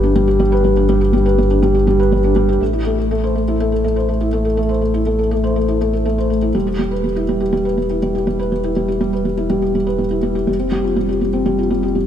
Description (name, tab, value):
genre	piano and strings electronica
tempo	122 BPM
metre	4/4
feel	straight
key	A minor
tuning	A4 = 437 Hz
part	felt-muted upright piano	riff	0.0-12.1 s	G3 to C5	-16 LUFS	equal	ping-pong delay
part	warm sub bass	bass	0.0-12.1 s	E1 to A1	-21 LUFS	equal	none
room	moderate lush hall reverb, RT60 2.5 s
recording	none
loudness	-15 LUFS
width	side -9 dB against mid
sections	0.0-2.6 A section; 2.6-12.1 B section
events	none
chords	0.0 G; 2.6 Am; 6.5 Em; 10.5 Fsus2